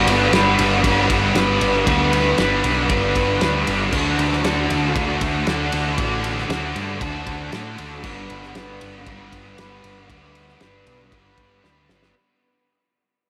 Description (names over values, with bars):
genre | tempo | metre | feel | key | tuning
rock, shoegaze and dream pop | 117 BPM | 4/4 | straight | G major | A4 = 440 Hz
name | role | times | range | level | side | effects
overdriven electric guitar | riff | 0.0-12.1 s | D3 to B4 | -22 LUFS | equal | subtle chorus
growling picked electric bass | bass | 0.0-12.1 s | G1 to A2 | -27 LUFS | equal | overdrive
loose indie drum kit | drums | 0.1-12.1 s | crash cymbal, kick drum, ride cymbal, snare drum | -27 LUFS | equal | none
room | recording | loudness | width
wet huge ambient reverb, RT60 4.1 s | dreamy mix soaked in reverb | -19 LUFS | mono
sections
0.0-12.1 A section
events
fade-out 0.0-12.1; drum fill 11.6-12.1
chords
0.0 G; 3.9 D; 8.0 G